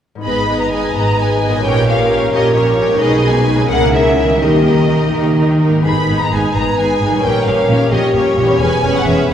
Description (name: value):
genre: classical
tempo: 86 BPM (dotted quarters)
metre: 6/8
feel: rubato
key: G# minor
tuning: A4 = 440 Hz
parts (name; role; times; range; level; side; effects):
- concert harp; arpeggios; 0.2-9.3 s; E2 to Db5; -20 LUFS; left 3 dB; none
- warm symphonic violin section; melody; 0.3-9.3 s; Db5 to B5; -20 LUFS; left 2 dB; none
- warm symphonic violin section; second line; 0.3-9.3 s; G4 to D#5; -21 LUFS; equal; none
- rich symphonic viola section; accompaniment; 0.3-9.3 s; G#3 to G#4; -20 LUFS; right 2 dB; none
- dark French horn section; sustained chords; 0.3-9.3 s; G4 to B4; -18 LUFS; equal; none
- rich studio cello section; bass; 0.3-9.3 s; E2 to D#3; -19 LUFS; right 1 dB; none
- rich studio double bass section; bass; 0.3-9.3 s; E1 to D#2; -20 LUFS; right 2 dB; none
room: wet church reverb, RT60 3.7 s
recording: recorded in a church or concert hall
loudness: -11 LUFS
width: side -9 dB against mid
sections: 0.3-9.3 A section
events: none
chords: 0.3 G#m; 1.6 Gdim/Bb; 3.0 G#m/B; 3.7 A#m7b5/C#; 4.4 D#; 5.9 G#m; 7.2 Gdim/Bb; 8.6 C#m7/E